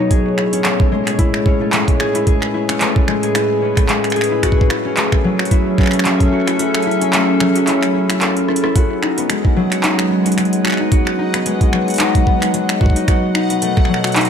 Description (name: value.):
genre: IDM.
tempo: 111 BPM.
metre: 4/4.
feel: swing 56% on 16ths.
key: unclear.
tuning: A4 = 440 Hz.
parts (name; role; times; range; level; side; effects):
glassy FM pad; sustained chords; 0.0-14.3 s; A2 to F#5; -20 LUFS; equal; ensemble chorus, built-in reverb.
concert harp; arpeggios; 0.0-14.3 s; F#3 to A4; -17 LUFS; left 2 dB; tape echo.
booming analog drum machine; drums; 0.1-14.3 s; finger snaps, handclaps, hi-hat, rim click; -21 LUFS; right 1 dB; overdrive, tape echo.
electronic kick drum; drums; 0.1-13.9 s; none; -14 LUFS; right 1 dB; none.
backwards swelling texture; texture; 9.2-14.3 s; F#5; -28 LUFS; left 2 dB; built-in reverb.
room: light reverb.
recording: none.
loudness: -13 LUFS.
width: side -7 dB against mid.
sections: 0.0-8.8 A section; 8.8-14.3 A section.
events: kick drops out 6.6-8.8; drum fill 8.2-8.8; band accent 8.6.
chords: 0.1 Amaj7; 4.4 F#m7; 8.8 G#m7; 13.1 B7.